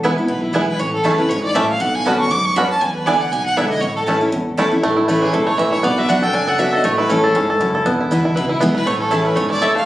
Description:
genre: bluegrass.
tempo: 238 BPM.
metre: 4/4.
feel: swing 55% on 8ths.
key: A major.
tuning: A4 = 438 Hz.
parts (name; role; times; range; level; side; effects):
picked steel-string acoustic guitar; accompaniment; 0.0-9.9 s; E2 to F#4; -20 LUFS; left 1 dB; none.
bluegrass banjo; arpeggios; 0.0-9.9 s; E3 to A4; -19 LUFS; right 1 dB; none.
mandolin; stabs; 0.0-4.7, 9.1-9.7 s; A3 to B5; -22 LUFS; right 3 dB; none.
upright bass; bass; 0.0-9.8 s; E1 to F#2; -28 LUFS; equal; none.
rich fiddle; melody; 0.3-9.9 s; E4 to D6; -20 LUFS; equal; tape echo.
room: moderate studio reverb, RT60 0.7 s.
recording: recorded on a phone in the room, club reverb, compression.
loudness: -15 LUFS.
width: side -14 dB against mid.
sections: 0.0-4.8 A section; 4.8-9.9 A section.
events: none.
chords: 0.0 E; 0.8 A; 1.8 Bmadd9; 2.8 E7; 3.8 A; 5.8 Bm; 6.8 A; 7.9 E; 8.9 A.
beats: 0.04 0.29 0.55 | 0.80 1.05 1.30 1.55 | 1.81 2.06 2.31 2.56 | 2.81 3.07 3.32 3.57 | 3.82 4.08 4.33 4.58 | 4.83 5.08 5.33 5.59 | 5.84 6.09 6.34 6.59 | 6.85 7.10 7.35 7.60 | 7.85 8.11 8.36 8.61 | 8.86 9.11 9.36 9.62.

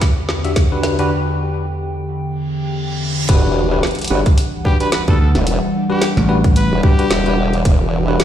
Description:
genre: glitch hop.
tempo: 110 BPM.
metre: 4/4.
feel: swing 57% on 16ths.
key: E minor.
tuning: A4 = 438 Hz.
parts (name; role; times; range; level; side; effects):
warbly tape-like pad; sustained chords; 0.0-8.2 s; E2 to G5; -21 LUFS; equal; chorus, built-in reverb, vintage 12-bit sampler grit, sidechain pumping.
drum and bass drum kit; drums; 0.0-8.2 s; crash cymbal, hi-hat, snare drum; -22 LUFS; equal; none.
electronic kick drum; drums; 0.0-7.8 s; none; -13 LUFS; equal; none.
bell-like tine electric piano; stabs; 0.4-8.2 s; D4 to E5; -22 LUFS; left 1 dB; medium stereo tremolo, sidechain pumping, ping-pong delay.
reverse cymbal and sub drop; sound effects; 2.5-5.5 s; none; -27 LUFS; right 1 dB; none.
formant-sweep wobble bass; bass; 3.3-8.2 s; E1 to G1; -18 LUFS; equal; chorus, tube saturation.
growling trumpet; melody; 4.7-7.6 s; G4 to B4; -24 LUFS; left 1 dB; ping-pong delay.
vintage slap bass; bass; 5.1-6.7 s; A1 to D2; -14 LUFS; equal; tube saturation.
room: light reverb.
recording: played on a big sound system in a bare room, large studio reverb.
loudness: -14 LUFS.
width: side -10 dB against mid.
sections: 0.0-3.3 A section; 3.3-8.2 B section.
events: build-up 0.0-3.3; drum fill 0.0-1.1; filter sweep on tine electric piano 0.0-3.3; filter sweep on ambient pad 0.0-3.3; break 1.1-3.3; reverse cymbal 2.5-3.3; drop 3.3-8.2; impact 3.3-5.5.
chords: 0.0 Em9.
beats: 0.02 0.56 | 1.11 1.65 2.20 2.74 | 3.29 3.83 4.38 4.92 | 5.47 6.02 6.56 7.11 | 7.65 8.20.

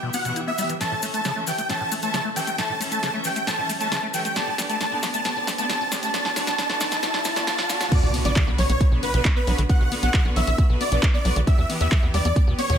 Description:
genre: uplifting trance.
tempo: 135 BPM.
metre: 4/4.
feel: straight.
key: B minor.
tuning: A4 = 436 Hz.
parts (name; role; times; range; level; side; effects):
bright studio string section; sustained chords; 0.0-12.8 s; D3 to E5; -32 LUFS; equal; sidechain pumping.
liquid acid bass; arpeggios; 0.0-12.8 s; A2 to E4; -31 LUFS; left 3 dB; chorus, vintage 12-bit sampler grit, sidechain pumping, digital delay.
dense compressed supersaw; melody; 0.1-12.8 s; B4 to A5; -26 LUFS; equal; sidechain pumping, digital delay.
house drum kit; drums; 0.1-12.8 s; crash cymbal, handclaps, hi-hat, snare drum; -28 LUFS; equal; sidechain pumping on hats, sidechain pumping on cymbals.
cabasa; percussion; 0.1-7.9 s; none; -34 LUFS; left 5 dB; none.
riser and impact; sound effects; 3.5-9.7 s; none; -32 LUFS; equal; none.
electronic kick drum; drums; 7.9-12.4 s; none; -20 LUFS; equal; none.
tight sequencer bass; bass; 8.0-12.8 s; B1 to E2; -22 LUFS; equal; sidechain pumping.
room: light reverb, digital ambience.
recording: high-pass filter.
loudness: -20 LUFS.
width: side -9 dB against mid.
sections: 0.0-7.9 A section; 7.9-12.8 B section.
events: build-up 0.0-7.9; filter sweep on acid bass 0.0-7.9; drum fill 0.8-7.9; riser 3.5-7.9; drop 7.9-12.8; impact 7.9-9.7.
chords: 0.0 Em; 0.8 A; 4.4 G; 7.9 Bm; 11.5 Em.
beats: 0.36 | 0.81 1.25 1.70 2.14 | 2.58 3.03 3.47 3.92 | 4.36 4.81 5.25 5.70 | 6.14 6.58 7.03 7.47 | 7.92 8.36 8.81 9.25 | 9.70 10.14 10.58 11.03 | 11.47 11.92 12.36.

